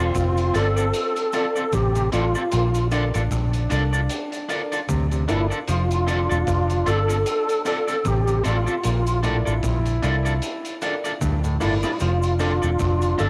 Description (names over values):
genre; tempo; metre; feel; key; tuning
roots reggae; 76 BPM; 4/4; swing 57% on 16ths; F major; A4 = 442 Hz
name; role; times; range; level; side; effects
tonewheel organ; melody; 0.0-13.3 s; E4 to A4; -26 LUFS; equal; overdrive, chorus vibrato, slow rotary speaker, cassette tape, analog delay
clear trombone; second line; 0.0-13.3 s; C4 to E4; -36 LUFS; equal; cassette tape, analog delay
electric guitar at the edge of break-up; accompaniment; 0.0-13.3 s; C4 to D5; -31 LUFS; equal; cassette tape, analog delay
vintage muted fingered electric bass; bass; 0.0-13.3 s; E1 to D2; -24 LUFS; equal; none
crunchy breakbeat drum kit; drums; 0.1-13.3 s; hi-hat, kick drum, rim click; -34 LUFS; equal; cassette tape, analog delay
cabasa; percussion; 0.1-13.3 s; none; -45 LUFS; equal; none
dark upright piano; stabs; 0.5-13.3 s; F4 to D5; -36 LUFS; equal; cassette tape
overdriven clav; arpeggios; 1.7-12.6 s; G2 to F3; -33 LUFS; equal; cassette tape
room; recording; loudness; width
light reverb, small room ambience; home recording on cassette; -22 LUFS; mono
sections
0.0-13.3 A section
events
none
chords
0.0 F6; 2.5 Bbmaj7; 5.7 F6; 8.8 Bbmaj7; 12.0 F6